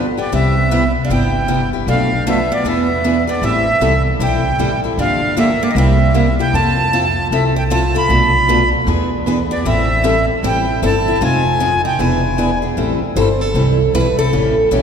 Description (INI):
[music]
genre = acoustic string swing (jazz manouche)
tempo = 154 BPM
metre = 4/4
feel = swing 62% on 8ths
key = C major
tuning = A4 = 444 Hz
[part]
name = picked acoustic archtop guitar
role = accompaniment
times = 0.0-14.8 s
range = B2 to A4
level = -20 LUFS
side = left 4 dB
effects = none
[part]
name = picked steel-string acoustic guitar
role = accompaniment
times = 0.0-14.8 s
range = B2 to B4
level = -22 LUFS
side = right 4 dB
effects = none
[part]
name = upright bass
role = bass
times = 0.0-14.8 s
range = E1 to F2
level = -18 LUFS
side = equal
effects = none
[part]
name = accordion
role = melody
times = 0.2-12.6 s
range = D5 to B5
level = -18 LUFS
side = right 1 dB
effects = none
[part]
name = picked steel-string acoustic guitar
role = second line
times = 0.2-14.7 s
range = Bb3 to C5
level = -23 LUFS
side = right 3 dB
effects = none
[sound]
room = wet cathedral reverb, RT60 4.5 s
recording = recorded in a church or concert hall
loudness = -13 LUFS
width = side -7 dB against mid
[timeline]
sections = 0.3-12.8 A section; 12.8-14.8 B section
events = steel-string acoustic guitar solo 12.8-14.8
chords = 0.3 Cmaj7; 1.9 Bm7b5; 2.6 E7; 3.4 Am7; 5.0 Gm7; 5.8 C7; 6.5 Fmaj7; 8.1 Bm7b5; 8.9 E7; 9.6 Am7; 11.2 Fm7; 12.0 E7; 12.8 Am9